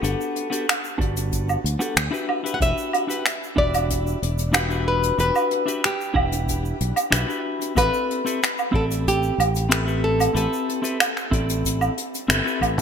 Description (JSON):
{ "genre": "sunset chillout", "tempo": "93 BPM", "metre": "4/4", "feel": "straight", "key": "A dorian", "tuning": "A4 = 440 Hz", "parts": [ { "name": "clean electric guitar", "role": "accompaniment", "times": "0.0-12.8 s", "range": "B3 to F#5", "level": "-26 LUFS", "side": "moving between left 5 dB and right 4 dB", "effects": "auto-pan, digital delay, shimmer reverb" }, { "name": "fingered electric bass", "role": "bass", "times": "0.0-12.8 s", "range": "E1 to D2", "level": "-24 LUFS", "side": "equal", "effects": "none" }, { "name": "jazz brush drum kit", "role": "drums", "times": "0.0-12.8 s", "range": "finger snaps, hi-hat, shaker, woodblock", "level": "-24 LUFS", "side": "right 1 dB", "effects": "gated reverb" }, { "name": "electronic kick drum", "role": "drums", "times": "1.0-12.7 s", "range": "none", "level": "-26 LUFS", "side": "equal", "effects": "overdrive" }, { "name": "flamenco guitar", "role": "melody", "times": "2.5-12.3 s", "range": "G4 to F#5", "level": "-25 LUFS", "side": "equal", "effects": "ping-pong delay, shimmer reverb" } ], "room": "moderate plate reverb, RT60 1.8 s, small room ambience", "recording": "bright 1980s-style digital production", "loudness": "-20 LUFS", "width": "side -7 dB against mid", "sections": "0.0-12.8 A section", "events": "band accent 12.3-12.6", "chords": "0.0 Gmaj7; 2.3 Em9; 7.8 Am7" }